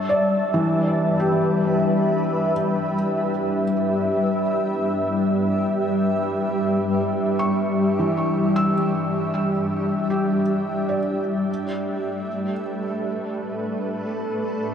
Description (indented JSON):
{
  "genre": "ambient",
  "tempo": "free time",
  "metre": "none",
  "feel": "none",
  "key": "G major",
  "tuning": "A4 = 438 Hz",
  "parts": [
    { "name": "granular cloud pad", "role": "sustained chords", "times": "0.0-14.7 s", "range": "G3 to A5", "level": "-22 LUFS", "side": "left 1 dB", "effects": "built-in reverb, shimmer reverb" },
    { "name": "organ-like drone", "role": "drone", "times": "0.0-14.7 s", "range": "G3 to D4", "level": "-29 LUFS", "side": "right 1 dB", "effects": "ensemble chorus, built-in reverb" },
    { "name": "felt-muted upright piano", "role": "arpeggios", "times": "0.1-14.7 s", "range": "E3 to E6", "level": "-26 LUFS", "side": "equal", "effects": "tape echo, shimmer reverb" }
  ],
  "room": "wet huge ambient reverb, RT60 9.4 s",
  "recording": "dark, warm production",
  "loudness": "-20 LUFS",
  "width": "side -8 dB against mid",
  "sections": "0.0-14.7 A section",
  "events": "fade-out on felt piano 0.0-14.7",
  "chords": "0.0 G6"
}